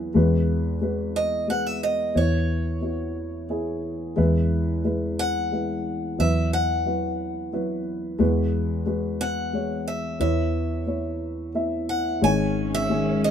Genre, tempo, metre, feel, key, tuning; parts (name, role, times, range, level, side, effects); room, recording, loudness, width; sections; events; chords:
acoustic folk-pop ballad; 90 BPM; 3/4; straight; E major; A4 = 439 Hz
dark upright piano; accompaniment; 0.0-13.3 s; G#1 to E5; -25 LUFS; left 2 dB
vintage muted fingered electric bass; bass; 0.0-13.3 s; G#1 to E2; -26 LUFS; right 1 dB
picked acoustic archtop guitar; melody; 1.2-13.3 s; C#5 to G#5; -27 LUFS; equal
dark chamber string section; sustained chords; 12.2-13.3 s; D#3 to C#4; -29 LUFS; equal
light reverb; minimal, uncompressed stereo recording; -22 LUFS; side -8 dB against mid
0.0-12.2 A section; 12.2-13.3 B section
0.0 E; 2.2 C#m7/E; 4.2 E; 6.2 Bsus4/E; 8.2 G#m7/E; 10.2 C#m7/E; 12.2 G#sus4